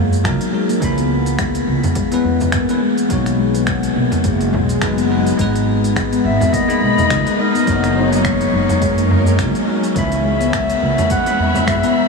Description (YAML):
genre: organic downtempo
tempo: 105 BPM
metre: 4/4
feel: swing 57% on 16ths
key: unclear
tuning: A4 = 440 Hz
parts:
  - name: bell-like tine electric piano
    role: accompaniment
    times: 0.0-11.9 s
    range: E3 to B5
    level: -24 LUFS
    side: equal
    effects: vintage 12-bit sampler grit, sidechain pumping, analog delay
  - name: handpan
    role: arpeggios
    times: 0.0-11.9 s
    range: G#3 to B3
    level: -18 LUFS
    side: left 3 dB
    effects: analog delay
  - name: upright bass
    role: bass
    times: 0.0-11.8 s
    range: F#1 to F#2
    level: -20 LUFS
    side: right 1 dB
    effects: sidechain pumping
  - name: organic electronic drum kit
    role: drums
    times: 0.1-11.9 s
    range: finger snaps, hi-hat, shaker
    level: -26 LUFS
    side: equal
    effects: none
  - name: electronic kick drum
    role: drums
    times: 0.2-11.8 s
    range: none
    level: -24 LUFS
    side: equal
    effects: none
  - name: frame drum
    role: percussion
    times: 1.8-11.6 s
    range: none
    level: -26 LUFS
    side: right 2 dB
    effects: none
  - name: swell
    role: sound effects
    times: 4.5-5.4 s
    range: none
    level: -27 LUFS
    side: left 2 dB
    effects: none
  - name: warm studio string section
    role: sustained chords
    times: 5.4-12.1 s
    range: F#3 to B5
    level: -23 LUFS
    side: left 3 dB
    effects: sidechain pumping
  - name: warm clarinet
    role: melody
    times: 6.3-12.1 s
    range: A#4 to F#5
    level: -20 LUFS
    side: left 1 dB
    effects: analog delay
room: wet huge ambient reverb, RT60 7.9 s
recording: dreamy mix soaked in reverb, small room ambience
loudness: -14 LUFS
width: side -3 dB against mid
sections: 0.0-12.1 A section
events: swell 4.5-5.4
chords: 0.0 F#6; 0.8 C#m7; 3.1 B; 5.4 G#m; 7.7 F#6; 10.0 C#m7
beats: 0.24 | 0.82 1.39 1.96 2.53 | 3.10 3.67 4.25 4.82 | 5.39 5.96 6.53 7.10 | 7.67 8.24 8.82 9.39 | 9.96 10.53 11.10 11.67